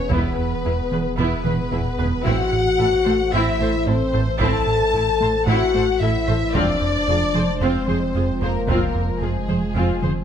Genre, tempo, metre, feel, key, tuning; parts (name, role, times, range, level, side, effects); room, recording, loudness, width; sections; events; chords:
cinematic, hybrid orchestral and electronic film score; 112 BPM; 4/4; straight; A4 = 441 Hz
warm symphonic violin section; second line; 0.0-10.2 s; Ab4 to A5; -26 LUFS; left 4 dB
dark French horn section; sustained chords; 0.0-10.2 s; Ab3 to A4; -23 LUFS; left 4 dB
dark analog pad; sustained chords; 0.0-10.2 s; E3 to C5; -30 LUFS; right 2 dB; chorus, phaser
soft dub sub bass; bass; 0.0-10.2 s; E1 to A1; -29 LUFS; equal
rich symphonic viola section; accompaniment; 0.1-10.1 s; B3 to C5; -27 LUFS; right 1 dB
round analog bass; riff; 0.1-10.2 s; E2 to A3; -24 LUFS; right 2 dB
dark symphonic double bass section; bass; 0.1-10.1 s; E1 to A1; -30 LUFS; right 5 dB
rich symphonic cello section; bass; 0.1-10.1 s; E2 to A2; -30 LUFS; right 3 dB
taiko ensemble; drums; 0.1-10.2 s; -27 LUFS; equal
light reverb; -18 LUFS; side -8 dB against mid
0.0-10.2 A section
drum fill 1.5-2.3, 10.0
0.0 E; 2.3 Am; 6.5 Fm